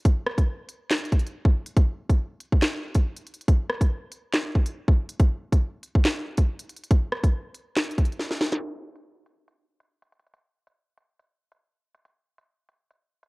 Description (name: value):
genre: hip hop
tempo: 140 BPM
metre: 4/4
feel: half-time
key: none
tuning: none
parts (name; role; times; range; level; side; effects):
- drill drum kit; drums; 0.1-13.3 s; handclaps, hi-hat, kick drum, rim click, snare drum; -21 LUFS; equal; none
room: little or no reverb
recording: worn, warbling old tape, cassette tape, warbly pitch drift, low-pass filter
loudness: -22 LUFS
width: side -28 dB against mid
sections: 0.0-8.6 A section; 8.6-13.3 B section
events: drum fill 8.2-8.6; filter sweep 8.6-13.3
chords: none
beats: | 0.05 0.48 0.91 1.34 | 1.77 2.19 2.62 3.05 | 3.48 3.91 4.34 4.77 | 5.19 5.62 6.05 6.48 | 6.91 7.34 7.77 8.19 | 8.62 9.05 9.48 9.91 | 10.34 10.77 11.19 11.62 | 12.05 12.48 12.91